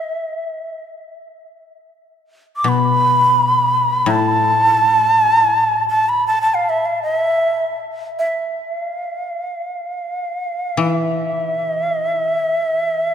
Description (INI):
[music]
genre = japanese traditional, Japanese chamber music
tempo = free time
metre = none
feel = none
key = unclear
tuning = A4 = 440 Hz
[part]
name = breathy shakuhachi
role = melody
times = 0.0-13.1 s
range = E5 to D6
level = -16 LUFS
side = right 1 dB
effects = none
[part]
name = koto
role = accompaniment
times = 2.6-13.1 s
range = A2 to E3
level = -21 LUFS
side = left 4 dB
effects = none
[sound]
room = wet cathedral reverb, RT60 4.3 s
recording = minimal, uncompressed stereo recording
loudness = -15 LUFS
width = side -8 dB against mid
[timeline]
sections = 0.0-13.1 A section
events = none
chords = none